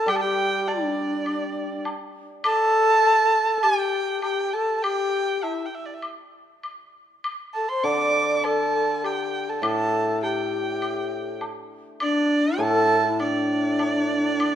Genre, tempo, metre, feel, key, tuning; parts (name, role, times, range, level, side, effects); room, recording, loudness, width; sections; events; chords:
chinese traditional, Chinese chamber ensemble; 101 BPM; 4/4; rubato; D shang mode; A4 = 440 Hz
rich erhu; melody; 0.0-14.6 s; D5 to D6; -24 LUFS; right 3 dB
mellow hollow xiao; second line; 0.0-14.6 s; D4 to D5; -25 LUFS; left 3 dB
hammered dulcimer; accompaniment; 0.1-1.8, 7.8-14.4 s; A2 to G3; -29 LUFS; right 1 dB
woodblock; percussion; 0.1-14.5 s; -31 LUFS; left 1 dB
moderate concert hall reverb, RT60 2.1 s; minimal, uncompressed stereo recording; -21 LUFS; side -10 dB against mid
0.0-14.6 A section